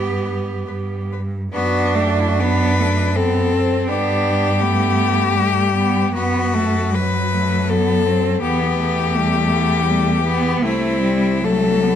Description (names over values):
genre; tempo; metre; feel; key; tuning
classical, lyrical piece for cello ensemble; 79 BPM; 3/4; uneven beats, rubato; G major; A4 = 441 Hz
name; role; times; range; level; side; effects
warm cello; second line; 0.0-12.0 s; F#3 to G4; -23 LUFS; right 6 dB; none
clear cello; accompaniment; 0.0-12.0 s; F#3 to D4; -22 LUFS; left 2 dB; none
rich cello; bass; 0.0-12.0 s; C2 to G2; -21 LUFS; right 1 dB; none
rich cello; melody; 0.2-12.0 s; E4 to B4; -20 LUFS; left 7 dB; none
room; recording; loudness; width
moderate recital hall reverb, RT60 1.4 s; close, detailed microphones; -16 LUFS; side -9 dB against mid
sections
0.0-1.5 A section; 1.5-12.0 B section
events
none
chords
0.0 G; 1.5 D/F#; 3.9 G; 6.1 B5/F#; 8.4 Em; 10.6 Am7/C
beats
0.68 | 1.53 2.38 3.15 | 3.87 4.60 5.36 | 6.14 6.94 7.69 | 8.41 9.15 9.88 | 10.63 11.42